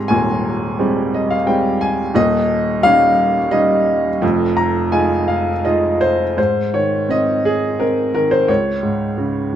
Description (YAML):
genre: classical, lyrical solo piano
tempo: 86 BPM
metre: 3/4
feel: rubato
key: F minor, Ab major from 6.4 s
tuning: A4 = 440 Hz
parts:
  - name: warm upright piano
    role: solo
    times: 0.0-9.6 s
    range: Eb1 to C6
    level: -14 LUFS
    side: equal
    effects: none
room: light reverb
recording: close, detailed microphones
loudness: -14 LUFS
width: side -10 dB against mid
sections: 0.0-6.4 A section; 6.4-9.6 B section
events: upright piano fill 0.8-2.2, 4.2-6.4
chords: 0.0 Abmaj7; 2.2 Eb7; 4.2 Fm7; 6.4 Ab; 8.5 Db5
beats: | 0.10 0.80 1.48 | 2.16 2.84 3.53 | 4.23 4.93 5.65 | 6.38 7.10 7.80 | 8.49 9.18